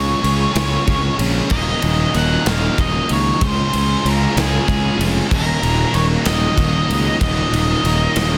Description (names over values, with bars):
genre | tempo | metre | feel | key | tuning
quiet-loud alternative rock | 63 BPM (dotted quarters) | 6/8 | straight | Eb minor | A4 = 440 Hz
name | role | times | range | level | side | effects
octave-fuzz lead guitar | melody | 0.0-8.4 s | Ab4 to Gb5 | -24 LUFS | equal | distortion, digital delay
crunchy overdriven guitar | riff | 0.0-8.4 s | Eb2 to Ab4 | -27 LUFS | equal | none
distorted electric guitar | riff | 0.0-8.4 s | Eb2 to Ab4 | -28 LUFS | equal | overdrive
overdriven semi-hollow guitar | riff | 0.0-8.4 s | Eb2 to Db4 | -28 LUFS | equal | none
fuzz fingered electric bass | bass | 0.0-8.4 s | Eb1 to Db2 | -22 LUFS | equal | overdrive
big rock drum kit | drums | 0.2-8.3 s | crash cymbal, kick drum, ride cymbal, snare drum | -24 LUFS | equal | none
room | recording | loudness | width
light reverb | dense, heavily limited modern master | -17 LUFS | mono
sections
0.0-8.4 A section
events
none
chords
0.0 Db; 1.5 Ebm; 3.4 Db; 5.3 Ebm